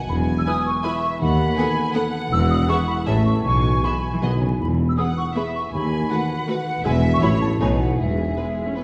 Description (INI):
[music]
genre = cinematic, playful, whimsical film cue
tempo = 160 BPM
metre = 3/4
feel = straight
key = E major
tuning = A4 = 440 Hz
[part]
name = rich studio violin section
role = melody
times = 0.0-8.8 s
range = B4 to G#5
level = -38 LUFS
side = equal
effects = none
[part]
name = concert harp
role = arpeggios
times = 0.0-8.8 s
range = A2 to B5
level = -30 LUFS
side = equal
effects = none
[part]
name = concert flute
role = second line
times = 0.1-8.7 s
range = E5 to E6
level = -28 LUFS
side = equal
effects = none
[part]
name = warm symphonic violin section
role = second line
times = 0.1-8.8 s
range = G#4 to G#5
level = -33 LUFS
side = equal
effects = none
[part]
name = rich studio cello section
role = bass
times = 0.1-8.3 s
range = D#2 to E3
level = -29 LUFS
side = equal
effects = none
[part]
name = rich studio double bass section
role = bass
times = 0.1-8.3 s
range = E1 to D#2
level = -27 LUFS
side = equal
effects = none
[part]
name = warm tuba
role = bass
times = 0.1-8.3 s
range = E1 to D#2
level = -29 LUFS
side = equal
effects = none
[part]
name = warm studio viola section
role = accompaniment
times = 0.5-8.8 s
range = F#3 to B4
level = -31 LUFS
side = equal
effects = none
[sound]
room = wet scoring stage reverb, RT60 1.5 s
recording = heard from further back in the room, vinyl crackle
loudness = -21 LUFS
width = mono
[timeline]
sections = 0.1-8.8 A section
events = none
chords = 0.1 E; 1.2 B7/D#; 2.3 E; 3.1 Amaj7; 3.4 E/B; 4.2 B; 4.6 E; 5.7 B7/D#; 6.8 E5; 7.2 A; 7.6 B9; 8.0 E